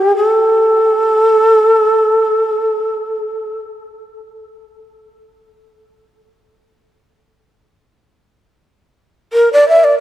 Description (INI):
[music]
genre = japanese traditional, Japanese chamber music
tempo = free time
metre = none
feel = none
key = A in sen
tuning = A4 = 440 Hz
[part]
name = breathy mellow shakuhachi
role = solo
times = 0.0-3.6, 9.3-10.0 s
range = G4 to E5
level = -10 LUFS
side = equal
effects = none
[sound]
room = moderate cathedral reverb, RT60 4.6 s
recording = dark, warm production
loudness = -10 LUFS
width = side -13 dB against mid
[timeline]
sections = 0.0-8.2 A section; 8.2-10.0 A section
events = none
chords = none